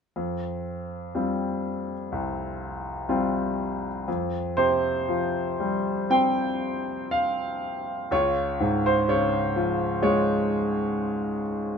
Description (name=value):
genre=classical, lyrical solo piano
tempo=58-65 BPM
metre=4/4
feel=rubato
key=F minor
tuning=A4 = 440 Hz
part: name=clear baby grand piano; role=solo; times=0.2-11.8 s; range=C2 to G5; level=-24 LUFS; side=equal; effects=none
room=light reverb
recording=minimal, uncompressed stereo recording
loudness=-24 LUFS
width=side -6 dB against mid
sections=0.2-4.1 A section; 4.1-11.8 B section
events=none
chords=0.2 Fsus2; 8.1 Db